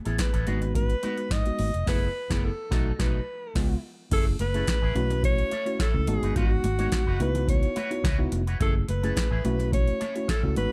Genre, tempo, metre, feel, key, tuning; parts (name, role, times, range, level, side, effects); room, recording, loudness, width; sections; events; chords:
early-eighties boogie funk; 107 BPM; 4/4; straight; F# dorian; A4 = 440 Hz
electric guitar with an envelope filter; riff; 0.0-10.6 s; A3 to C#5; -41 LUFS; equal; subtle chorus
mellow tine electric piano; accompaniment; 0.1-10.7 s; G#3 to A4; -34 LUFS; equal
vintage muted fingered electric bass; bass; 0.1-10.7 s; E#1 to G#2; -30 LUFS; equal
booming analog drum machine; drums; 0.1-10.7 s; crash cymbal, hi-hat, kick drum, snare drum; -29 LUFS; equal
breathy alto saxophone; melody; 0.2-10.7 s; F#4 to D#5; -33 LUFS; equal; slapback echo
congas; percussion; 0.5-10.7 s; -39 LUFS; equal
little or no reverb; -26 LUFS; mono
0.0-4.1 A section; 4.1-10.7 B section
band accent 1.9-4.1
0.5 G#m7; 1.9 F#m11; 2.7 B7; 3.6 C#7; 4.1 F#m9; 5.0 B9sus4; 6.1 G#m7; 7.2 C#m11; 8.6 F#m9; 9.4 B9sus4